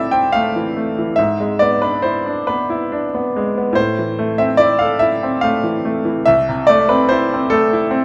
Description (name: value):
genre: classical, romantic nocturne for solo piano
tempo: 48 BPM (dotted quarters)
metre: 12/8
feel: rubato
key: A minor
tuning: A4 = 441 Hz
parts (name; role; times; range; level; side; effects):
- bright grand piano; solo; 0.0-8.0 s; C2 to G5; -16 LUFS; equal; none
room: moderate large studio reverb, RT60 0.9 s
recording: none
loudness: -17 LUFS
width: mono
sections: 0.0-8.0 A section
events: none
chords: 0.0 Am; 1.2 E7/G#; 3.8 Am; 6.3 Am/C